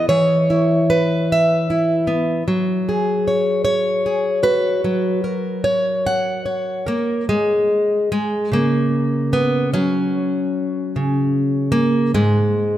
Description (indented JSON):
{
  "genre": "folk, solo fingerstyle acoustic guitar",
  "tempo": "50 BPM (dotted quarters)",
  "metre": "6/8",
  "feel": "rubato",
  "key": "unclear",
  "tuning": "A4 = 440 Hz",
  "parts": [
    { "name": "fingerpicked plugged-in steel-string acoustic guitar", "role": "solo", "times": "0.0-12.8 s", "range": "G#2 to F#5", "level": "-16 LUFS", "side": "equal", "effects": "none" }
  ],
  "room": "moderate concert hall reverb, RT60 2.2 s",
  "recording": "none",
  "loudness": "-16 LUFS",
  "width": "side -12 dB against mid",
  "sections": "0.0-7.3 A section; 7.3-12.8 B section",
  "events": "none",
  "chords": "0.0 E; 2.5 F#add9; 12.1 N.C."
}